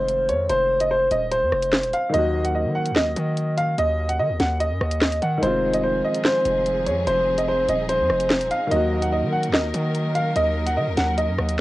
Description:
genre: hip hop, drill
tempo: 146 BPM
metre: 4/4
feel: half-time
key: F phrygian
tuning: A4 = 440 Hz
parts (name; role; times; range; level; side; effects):
- warm upright piano; melody; 0.0-11.6 s; C5 to Gb5; -21 LUFS; equal; cassette tape, analog delay
- clear concert grand piano; accompaniment; 0.0-11.6 s; Eb3 to Gb4; -30 LUFS; left 1 dB; cassette tape
- hard-hitting 808-style bass; bass; 0.0-11.6 s; Eb1 to Eb3; -26 LUFS; equal; none
- drill drum kit; drums; 0.1-11.6 s; handclaps, hi-hat, rim click, snare drum; -23 LUFS; equal; cassette tape
- warm symphonic string section; sustained chords; 5.4-11.6 s; F3 to Bb4; -30 LUFS; equal; cassette tape
room: moderate studio reverb, RT60 0.6 s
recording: home recording on cassette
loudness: -19 LUFS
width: side -17 dB against mid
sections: 0.0-11.6 A section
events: none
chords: 0.0 Fm7; 2.1 Ebm; 5.4 Fm7; 8.7 Ebm

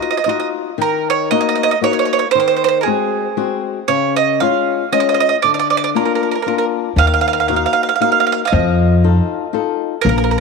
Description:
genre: italian folk, Italian serenade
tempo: 117 BPM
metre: 3/4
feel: swing 55% on 8ths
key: Eb minor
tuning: A4 = 440 Hz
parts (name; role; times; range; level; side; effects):
- bowl-back mandolin; melody; 0.0-10.4 s; Ab4 to F5; -16 LUFS; right 10 dB; none
- flamenco guitar; accompaniment; 0.0-10.4 s; Db3 to A4; -18 LUFS; left 15 dB; none
- upright bass; bass; 7.0-10.4 s; Bb1 to F2; -14 LUFS; left 1 dB; none
room: moderate plate reverb, RT60 3.5 s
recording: 1960s-style stereo with parts hard left and right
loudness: -13 LUFS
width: side -4 dB against mid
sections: 0.8-10.4 A section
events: none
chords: 0.0 Ebmadd9; 0.8 Ebm; 2.4 Ab7/Eb; 3.9 Db; 5.4 Bb/D; 7.0 Ebm; 8.5 F7

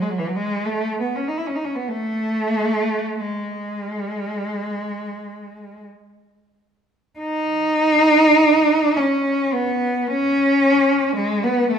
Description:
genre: classical, free, expressive piece for unaccompanied cello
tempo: 40-56 BPM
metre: 4/4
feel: rubato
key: unclear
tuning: A4 = 439 Hz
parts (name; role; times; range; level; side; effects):
- warm cello; solo; 0.0-11.8 s; E3 to E4; -18 LUFS; equal; none
room: moderate recital hall reverb, RT60 1.6 s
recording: minimal, uncompressed stereo recording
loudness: -17 LUFS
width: side -7 dB against mid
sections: 0.0-11.8 A section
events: none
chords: none

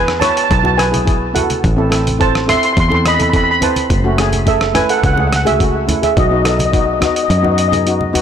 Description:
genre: calypso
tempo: 106 BPM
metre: 4/4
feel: straight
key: E major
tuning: A4 = 440 Hz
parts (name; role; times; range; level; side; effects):
- steel pan; melody; 0.0-7.7 s; F#4 to C6; -15 LUFS; right 1 dB; ping-pong delay
- steel pan; accompaniment; 0.0-8.2 s; A3 to B4; -19 LUFS; left 1 dB; none
- fingered electric bass; bass; 0.0-8.2 s; F#1 to F#2; -18 LUFS; equal; none
- dusty soul sampler-style drum kit; drums; 0.1-8.2 s; hi-hat, kick drum, rim click; -18 LUFS; equal; overdrive
- congas; percussion; 0.2-8.2 s; none; -24 LUFS; right 1 dB; none
room: light reverb, small room ambience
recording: blown-out, overdriven recording, overdrive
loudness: -11 LUFS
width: side -8 dB against mid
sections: 0.0-8.2 A section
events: kick and snare drop out 7.3-8.2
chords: 0.0 E; 1.6 Am; 3.9 F#m7; 6.2 B

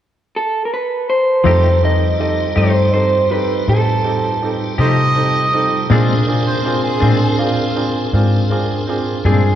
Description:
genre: blues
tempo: 54 BPM (dotted quarters)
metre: 12/8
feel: straight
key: F mixolydian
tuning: A4 = 440 Hz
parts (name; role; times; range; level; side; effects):
- electric guitar through a small old amp; melody; 0.4-9.6 s; Ab4 to Eb5; -17 LUFS; right 1 dB; none
- semi-hollow electric guitar; accompaniment; 1.4-9.5 s; Bb2 to G4; -23 LUFS; left 4 dB; tremolo
- vintage muted fingered electric bass; bass; 1.4-9.6 s; F2 to C3; -17 LUFS; left 1 dB; none
- bright upright piano; accompaniment; 1.5-9.5 s; C4 to A4; -21 LUFS; right 2 dB; none
- tonewheel organ; sustained chords; 1.5-9.6 s; G3 to Bb4; -24 LUFS; right 1 dB; slow rotary speaker, chorus vibrato
- mellow harmonica; second line; 4.8-7.8 s; F4 to Eb5; -20 LUFS; right 2 dB; overdrive
room: wet cathedral reverb, RT60 5.4 s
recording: recorded in a church or concert hall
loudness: -13 LUFS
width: side -10 dB against mid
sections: 0.0-1.5 A section; 1.5-9.6 B section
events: none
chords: 0.0 N.C.; 1.5 F9; 5.9 Bb9

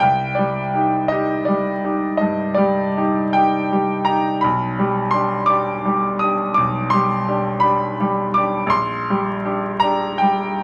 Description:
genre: classical, romantic nocturne for solo piano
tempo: 49-57 BPM (dotted quarters)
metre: 12/8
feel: rubato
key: unclear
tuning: A4 = 442 Hz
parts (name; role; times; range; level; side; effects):
- bright grand piano; solo; 0.0-10.6 s; Bb1 to Eb6; -19 LUFS; equal; none
room: moderate stone room reverb, RT60 1.2 s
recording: vinyl crackle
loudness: -19 LUFS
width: mono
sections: 0.0-10.6 A section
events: none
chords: 0.0 Cm; 4.4 G/B; 8.7 Gm/Bb

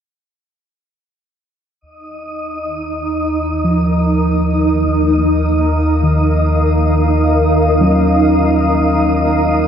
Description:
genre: ambient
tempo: 50 BPM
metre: 4/4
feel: straight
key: Eb minor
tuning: A4 = 438 Hz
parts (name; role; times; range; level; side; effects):
- granular cloud pad; sustained chords; 2.5-9.7 s; Eb4 to F5; -16 LUFS; right 1 dB; built-in reverb, shimmer reverb
- round analog bass; bass; 1.8-9.7 s; Eb2; -17 LUFS; equal; tube saturation
- wind-like tuned noise texture; texture; 1.8-9.7 s; Eb5 to Eb6; -22 LUFS; left 2 dB; built-in reverb, shimmer reverb
- muted felt-like synth keys; arpeggios; 3.6-9.7 s; Eb3 to Db4; -18 LUFS; equal; chorus, ping-pong delay
room: wet huge ambient reverb, RT60 8.5 s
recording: none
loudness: -12 LUFS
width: side -8 dB against mid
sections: 1.8-9.7 A section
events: none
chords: 1.8 Ebmadd9

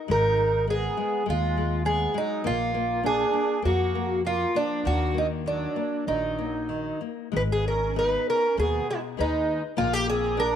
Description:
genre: fado-style ballad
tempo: 99 BPM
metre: 4/4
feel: rubato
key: Eb harmonic minor, G# minor from 7.3 s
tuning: A4 = 441 Hz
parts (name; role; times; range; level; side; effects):
- nylon-string guitar; accompaniment; 0.0-10.6 s; B2 to D5; -33 LUFS; left 13 dB; none
- fingerpicked twelve-string acoustic guitar; melody; 0.1-10.6 s; D4 to B4; -25 LUFS; right 1 dB; tape echo
- musette accordion; second line; 0.1-10.6 s; F3 to Eb4; -35 LUFS; right 10 dB; none
- upright bass; bass; 0.1-10.6 s; Ab1 to F2; -29 LUFS; equal; none
room: light reverb, studio reverb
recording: 1960s-style stereo with parts hard left and right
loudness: -23 LUFS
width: side -9 dB against mid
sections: 0.0-7.3 A section; 7.3-10.6 B section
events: none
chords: 0.1 Abm; 2.4 Bb; 4.8 Ebm; 7.3 G#m; 9.8 A#7

